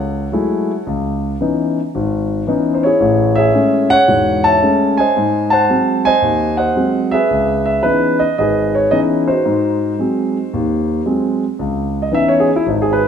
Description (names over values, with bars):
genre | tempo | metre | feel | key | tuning
jazz | 112 BPM | 4/4 | swing 67% on 8ths | C# minor | A4 = 442 Hz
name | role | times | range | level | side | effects
warm concert grand piano | solo | 0.0-13.1 s | E1 to A5 | -13 LUFS | equal | none
room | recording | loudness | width
moderate large studio reverb, RT60 1.4 s | minimal, uncompressed stereo recording | -13 LUFS | side -7 dB against mid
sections
0.0-11.6 A section; 11.6-13.1 B section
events
grand piano solo 11.6-13.1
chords
0.0 F#m9; 0.9 C#m9; 3.0 Amaj7; 5.2 G#7; 7.3 C#m9; 9.4 G#7; 11.6 C#m9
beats
0.33 | 0.87 1.40 1.94 2.48 | 3.01 3.55 4.08 4.62 | 5.16 5.69 6.23 6.76 | 7.30 7.84 8.37 8.91 | 9.44 9.98 10.52 11.05 | 11.59 12.12 12.65